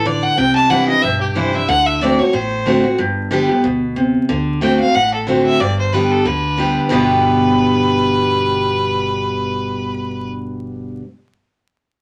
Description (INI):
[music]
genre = bluegrass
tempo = 184 BPM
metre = 4/4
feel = swing 56% on 8ths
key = G major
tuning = A4 = 440 Hz
[part]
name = clear fiddle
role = melody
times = 0.0-10.3 s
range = G4 to A5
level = -20 LUFS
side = equal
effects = none
[part]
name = picked steel-string acoustic guitar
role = accompaniment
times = 0.0-11.0 s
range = G2 to G4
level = -18 LUFS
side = equal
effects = none
[part]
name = upright bass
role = bass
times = 0.0-11.0 s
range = G1 to D2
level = -30 LUFS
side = equal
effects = none
[sound]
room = moderate studio reverb, RT60 0.5 s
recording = vinyl crackle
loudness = -16 LUFS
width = mono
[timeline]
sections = 0.0-4.3 A section; 4.3-6.9 B section; 6.9-9.5 C section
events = none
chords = 0.4 Cadd9; 1.7 D7; 3.0 G; 4.3 D7; 5.6 G